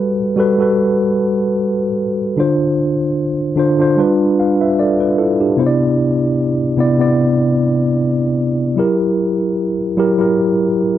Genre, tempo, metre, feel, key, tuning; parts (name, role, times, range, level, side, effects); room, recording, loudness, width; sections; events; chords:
soul; 75 BPM; 4/4; swing 54% on 16ths; G major; A4 = 444 Hz
mellow tine electric piano; solo; 0.0-11.0 s; C3 to F5; -13 LUFS; equal; medium stereo tremolo
light reverb; dry, close 1970s-style studio recording; -13 LUFS; side -12 dB against mid
0.0-11.0 A section
tine electric piano fill 10.8
0.0 Gmaj9; 2.4 Dm7; 4.0 G7; 5.6 Cmaj9; 8.8 F#7b9